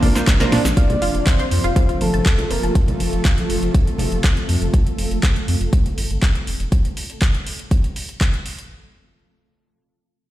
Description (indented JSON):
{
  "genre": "progressive house",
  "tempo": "121 BPM",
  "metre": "4/4",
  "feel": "straight",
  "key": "F major",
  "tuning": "A4 = 440 Hz",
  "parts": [
    { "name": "soft octave-layered synth lead", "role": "melody", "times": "0.0-2.7 s", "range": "A4 to F5", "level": "-26 LUFS", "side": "left 1 dB", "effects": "chorus, phaser, sidechain pumping, dub echo" },
    { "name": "shimmering ambient pad", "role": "sustained chords", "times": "0.0-6.7 s", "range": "C3 to A4", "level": "-26 LUFS", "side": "equal", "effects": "chorus, built-in reverb, sidechain pumping" },
    { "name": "analog pluck", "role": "arpeggios", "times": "0.0-2.7 s", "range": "D4 to A5", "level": "-26 LUFS", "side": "right 2 dB", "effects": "wide subtle chorus, vintage 12-bit sampler grit, sidechain pumping, dub echo" },
    { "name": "bright concert grand piano", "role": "stabs", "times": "0.0-0.6 s", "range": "Bb3 to C5", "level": "-26 LUFS", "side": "right 2 dB", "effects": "sidechain pumping, dub echo" },
    { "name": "round analog bass", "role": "bass", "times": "0.0-6.7 s", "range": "F1 to Bb2", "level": "-23 LUFS", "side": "equal", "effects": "sidechain pumping" },
    { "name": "deep house drum kit", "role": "drums", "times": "0.0-8.7 s", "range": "cabasa, handclaps, hi-hat, snare drum", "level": "-25 LUFS", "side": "equal", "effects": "overdrive, sidechain pumping on hats, sidechain pumping on perc" },
    { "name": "electronic kick drum", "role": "drums", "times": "0.0-8.3 s", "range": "none", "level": "-16 LUFS", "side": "equal", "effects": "none" },
    { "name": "congas", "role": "percussion", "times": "0.0-4.1 s", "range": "none", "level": "-26 LUFS", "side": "equal", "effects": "sidechain pumping on perc" }
  ],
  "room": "little or no reverb",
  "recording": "played on a big sound system in a bare room, stone room reverb",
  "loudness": "-16 LUFS",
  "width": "side -14 dB against mid",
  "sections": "0.8-8.7 A section",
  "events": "drum fill 0.0-0.8; filter sweep on ambient pad 0.8-6.7",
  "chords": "0.0 Bbadd9; 0.8 F",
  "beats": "0.27 | 0.77 1.27 1.76 2.26 | 2.75 3.25 3.75 4.24 | 4.74 5.23 5.73 6.22 | 6.72 7.22 7.71 8.21"
}